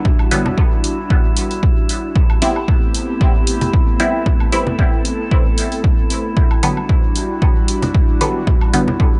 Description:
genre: dub techno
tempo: 114 BPM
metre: 4/4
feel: swing 54% on 16ths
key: A minor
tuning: A4 = 440 Hz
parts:
  - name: airy breathy pad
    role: sustained chords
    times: 0.0-9.2 s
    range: G3 to A4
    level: -26 LUFS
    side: equal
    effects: chorus, sidechain pumping
  - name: drifting glass-harmonics texture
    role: texture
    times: 0.0-9.2 s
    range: E4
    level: -31 LUFS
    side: equal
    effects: chorus, built-in reverb, sidechain pumping
  - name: electronic kick drum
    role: drums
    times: 0.1-9.1 s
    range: none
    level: -17 LUFS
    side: equal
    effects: none
  - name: congas and woodblock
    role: percussion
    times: 0.1-9.0 s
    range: none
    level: -27 LUFS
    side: equal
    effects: sidechain pumping on perc, dub echo
  - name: filtered dub chord stab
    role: stabs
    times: 0.3-8.9 s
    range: D3 to E4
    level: -24 LUFS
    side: equal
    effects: chorus, phaser, sidechain pumping, dub echo
  - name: electronic hi-hat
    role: drums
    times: 0.3-8.8 s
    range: none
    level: -26 LUFS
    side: equal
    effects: none
room: digital ambience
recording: nothing above 10.9 kHz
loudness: -16 LUFS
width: mono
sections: 0.0-9.2 A section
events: none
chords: 0.0 Em9; 2.2 Am9; 6.4 Em9

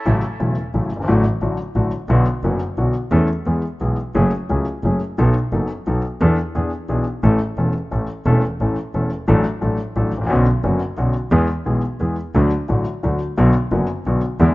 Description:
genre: tango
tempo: 176 BPM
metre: 3/4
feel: rubato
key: A major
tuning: A4 = 437 Hz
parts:
  - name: warm grand piano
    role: accompaniment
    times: 0.1-14.5 s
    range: E1 to A4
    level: -20 LUFS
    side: left 2 dB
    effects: none
  - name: dark double bass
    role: bass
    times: 0.1-14.5 s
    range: E1 to E2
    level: -19 LUFS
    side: right 1 dB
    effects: none
room: studio reverb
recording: rough home demo mix, nothing above 7.5 kHz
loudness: -17 LUFS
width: side -20 dB against mid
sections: 0.1-14.5 A section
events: none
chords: 0.1 A6; 1.1 D/A; 2.1 Bm; 3.1 A/E; 3.5 E; 4.2 F#madd9; 5.2 B7; 6.2 E7sus4; 6.5 E7; 7.2 A; 9.3 D/A; 10.3 Bmadd9; 11.3 E; 12.4 D; 13.4 Bm

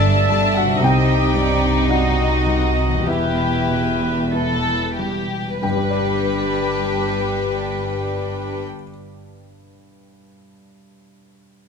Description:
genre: cinematic, emotional film score for orchestra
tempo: 45-60 BPM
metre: 4/4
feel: rubato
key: G major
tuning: A4 = 440 Hz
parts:
  - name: rich studio violin section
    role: melody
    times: 0.0-8.6 s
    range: D4 to B4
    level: -24 LUFS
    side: left 4 dB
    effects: none
  - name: clear clarinet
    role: second line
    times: 0.0-8.6 s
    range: E4 to A4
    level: -27 LUFS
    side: left 3 dB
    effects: none
  - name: dark studio violin section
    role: second line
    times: 0.0-8.6 s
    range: E5 to A5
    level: -29 LUFS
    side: left 1 dB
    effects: none
  - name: felt-muted upright piano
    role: accompaniment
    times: 0.0-11.7 s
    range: C2 to A5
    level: -24 LUFS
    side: left 1 dB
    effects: none
  - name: warm studio viola section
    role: accompaniment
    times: 0.0-8.6 s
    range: G3 to E5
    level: -26 LUFS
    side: right 1 dB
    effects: none
  - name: concert harp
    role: arpeggios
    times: 0.0-9.5 s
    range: G2 to D5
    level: -30 LUFS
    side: left 11 dB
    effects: none
  - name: dark studio double bass section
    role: bass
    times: 0.0-8.6 s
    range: E1 to C2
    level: -25 LUFS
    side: right 2 dB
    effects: none
  - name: warm studio cello section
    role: bass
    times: 0.0-8.6 s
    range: E2 to C3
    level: -25 LUFS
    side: right 3 dB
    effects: none
room: light reverb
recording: close, detailed microphones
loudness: -17 LUFS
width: side -6 dB against mid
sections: 0.0-5.6 A section; 5.6-10.5 B section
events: slowing down 0.0-5.6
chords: 0.0 Gsus2; 0.8 Cmadd9; 3.1 Em; 5.6 G

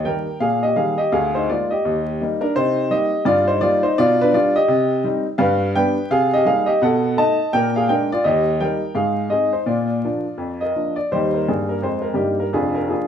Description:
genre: jazz, stride piano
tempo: 168 BPM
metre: 4/4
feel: swing 61% on 8ths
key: Eb major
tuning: A4 = 441 Hz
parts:
  - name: clear upright piano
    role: solo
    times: 0.0-13.1 s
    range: F1 to A5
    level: -17 LUFS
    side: equal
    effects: none
room: wet club reverb, RT60 0.7 s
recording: heard from further back in the room, vinyl crackle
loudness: -17 LUFS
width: side -8 dB against mid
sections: 0.0-11.1 A section; 11.1-13.1 B section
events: none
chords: 0.0 Eb; 1.1 Bb7/D; 1.8 Eb; 2.5 Cm7; 4.0 G7/B; 4.7 Cm; 5.4 G7; 6.1 Cm7; 6.8 B7; 7.5 Bb7; 8.3 Eb; 9.0 Ab; 9.7 Bb; 11.1 Eb; 12.5 Bb7/F

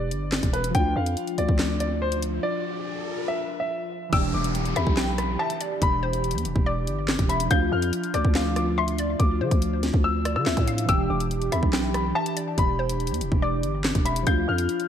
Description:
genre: hip hop, drill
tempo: 142 BPM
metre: 4/4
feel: half-time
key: E phrygian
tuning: A4 = 440 Hz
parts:
  - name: clear concert grand piano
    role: melody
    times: 0.0-14.9 s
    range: B4 to G6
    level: -29 LUFS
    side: left 3 dB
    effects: low-pass filter, ping-pong delay
  - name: warbly lo-fi synth keys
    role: accompaniment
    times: 0.0-14.9 s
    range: E3 to G4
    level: -31 LUFS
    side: right 1 dB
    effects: chorus, phaser, low-pass filter
  - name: growling 808-style bass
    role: bass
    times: 0.0-14.7 s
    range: E1 to D3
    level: -27 LUFS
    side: equal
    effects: none
  - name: drill drum kit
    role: drums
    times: 0.1-14.9 s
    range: handclaps, hi-hat, kick drum, rim click, snare drum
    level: -25 LUFS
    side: equal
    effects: gated reverb
  - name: riser and downlifter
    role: sound effects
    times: 1.3-7.5 s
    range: none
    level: -37 LUFS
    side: right 1 dB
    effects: none
  - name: hollow square pluck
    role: second line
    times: 4.1-14.9 s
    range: C5 to G5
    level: -33 LUFS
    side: left 3 dB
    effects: chorus, ping-pong delay
  - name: airy breathy pad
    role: sustained chords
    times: 4.1-14.9 s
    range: E3 to G4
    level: -34 LUFS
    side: equal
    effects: chorus
room: light reverb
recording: bright 1980s-style digital production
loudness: -22 LUFS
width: side -9 dB against mid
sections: 0.0-4.1 A section; 4.1-14.9 B section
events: riser 1.3-4.1; break 2.4-4.1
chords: 0.0 Em7; 0.7 Dmadd9; 4.1 Em7; 7.5 Dmadd9; 10.9 Em7; 14.3 Dm

